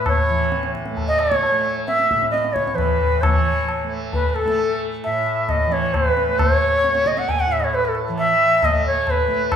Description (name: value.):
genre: indian classical, Hindustani.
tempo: 133 BPM.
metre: 7/4.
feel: straight.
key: A raga yaman.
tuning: A4 = 440 Hz.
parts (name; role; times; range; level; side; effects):
bright reedy bansuri; melody; 0.0-9.6 s; A4 to G#5; -18 LUFS; equal; none.
tanpura; drone; 0.0-9.6 s; A2 to A3; -26 LUFS; right 2 dB; none.
tabla; percussion; 0.1-9.6 s; none; -23 LUFS; left 2 dB; none.
room: wet large studio reverb, RT60 1.3 s.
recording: band playing live in one room.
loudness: -17 LUFS.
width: side -8 dB against mid.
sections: 0.0-3.2 A section; 3.2-9.6 B section.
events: none.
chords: none.